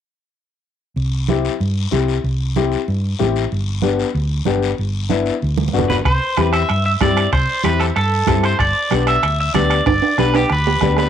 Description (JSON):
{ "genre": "latin, cumbia", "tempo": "189 BPM", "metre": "4/4", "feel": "straight", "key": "unclear", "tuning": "A4 = 440 Hz", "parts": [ { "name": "hollow-body short-scale fingered electric bass", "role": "bass", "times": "1.0-11.1 s", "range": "G1 to G2", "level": "-19 LUFS", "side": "equal", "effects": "none" }, { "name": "congas", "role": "percussion", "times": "1.0-11.0 s", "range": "none", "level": "-25 LUFS", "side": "right 10 dB", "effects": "none" }, { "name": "guiro", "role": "percussion", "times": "1.0-11.1 s", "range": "none", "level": "-30 LUFS", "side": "left 11 dB", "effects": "none" }, { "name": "dark upright piano", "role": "accompaniment", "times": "1.3-11.0 s", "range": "B3 to G4", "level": "-20 LUFS", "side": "left 8 dB", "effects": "none" }, { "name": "electric guitar at the edge of break-up", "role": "melody", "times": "5.9-11.1 s", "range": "G4 to E5", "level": "-18 LUFS", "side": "right 1 dB", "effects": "spring reverb, cassette tape" }, { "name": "bombo", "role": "percussion", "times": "6.1-11.1 s", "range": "none", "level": "-22 LUFS", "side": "right 1 dB", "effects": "none" }, { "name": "timbales", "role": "percussion", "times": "6.1-11.1 s", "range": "none", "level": "-23 LUFS", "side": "right 11 dB", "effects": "none" } ], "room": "moderate small room reverb, RT60 0.5 s", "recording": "home recording on cassette", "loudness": "-15 LUFS", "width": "side -9 dB against mid", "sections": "1.0-6.1 A section; 6.1-11.1 B section", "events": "drum fill 5.6-6.1, 9.9-11.1", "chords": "1.0 C; 3.5 G; 6.1 C; 8.6 G" }